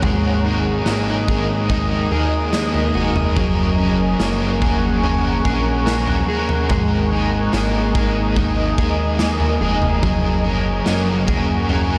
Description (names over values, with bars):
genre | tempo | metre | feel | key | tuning
dream pop | 72 BPM | 4/4 | straight | unclear | A4 = 439 Hz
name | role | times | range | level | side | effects
crunchy overdriven guitar | accompaniment | 0.0-12.0 s | Ab2 to Bb4 | -27 LUFS | equal | tremolo, ensemble chorus
shimmering ambient pad | sustained chords | 0.0-12.0 s | Bb4 to Eb6 | -27 LUFS | equal | chorus, built-in reverb
clean electric guitar | arpeggios | 0.0-12.0 s | Gb3 to Ab4 | -25 LUFS | equal | lush chorus, delay
chorused synth bass | bass | 0.0-12.0 s | F1 to Eb2 | -25 LUFS | equal | none
raw garage drum kit | drums | 0.0-11.9 s | kick drum, snare drum, toms | -24 LUFS | equal | none
room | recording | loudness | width
light reverb, studio ambience | none | -18 LUFS | mono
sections
0.0-12.0 A section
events
none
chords
0.0 Absus2; 3.4 Gbadd9; 6.7 Absus2; 10.0 Gbadd9